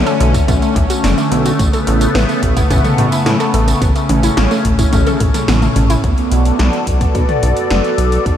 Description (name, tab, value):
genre	synthwave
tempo	108 BPM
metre	4/4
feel	straight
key	B minor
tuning	A4 = 441 Hz
part	phased analog pad	sustained chords	0.0-8.4 s	C#3 to D5	-16 LUFS	left 1 dB	phaser, chorus, sidechain pumping
part	wide unison pluck	arpeggios	0.0-6.0 s	A3 to A4	-22 LUFS	right 2 dB	analog chorus, analog delay
part	chorused synth bass	bass	0.0-8.4 s	F#1 to A2	-15 LUFS	equal	sidechain pumping
part	80s electronic pad drums	drums	0.1-8.4 s	hi-hat, snare drum, tambourine, toms	-20 LUFS	equal	gated reverb on snare and toms, overdrive, studio reverb
part	electronic kick drum	drums	0.3-8.4 s	none	-16 LUFS	equal	studio reverb
room	moderate huge ambient reverb, RT60 7.3 s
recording	dreamy mix soaked in reverb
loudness	-11 LUFS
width	side -10 dB against mid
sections	0.0-6.0 A section; 6.0-8.4 B section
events	drum fill 4.9-6.0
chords	0.0 Bm7; 1.6 Aadd9; 6.0 Bm7